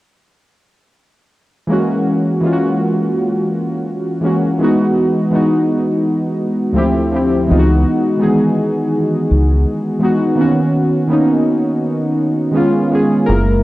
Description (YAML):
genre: lo-fi hip hop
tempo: 83 BPM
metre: 4/4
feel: swing 61% on 16ths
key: unclear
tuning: A4 = 441 Hz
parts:
  - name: warbly lo-fi synth keys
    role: accompaniment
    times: 1.7-13.6 s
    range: D2 to A#4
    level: -13 LUFS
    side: equal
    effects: chorus, low-pass filter
  - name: deep dub fingered electric bass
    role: bass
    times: 7.5-13.6 s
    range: F#1 to C#2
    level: -13 LUFS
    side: equal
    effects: transformer saturation
room: wet studio reverb, RT60 0.6 s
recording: worn, warbling old tape, cassette tape, warbly pitch drift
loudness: -13 LUFS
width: side -17 dB against mid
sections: 1.7-13.3 A section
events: none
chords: 1.7 F#9; 4.6 Emaj9; 6.8 Dm11; 7.5 C#m11; 10.4 Bmaj9; 12.6 C#7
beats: | 1.71 2.43 3.16 3.88 | 4.60 5.33 6.05 6.77 | 7.49 8.22 8.94 9.66 | 10.38 11.11 11.83 12.55 | 13.28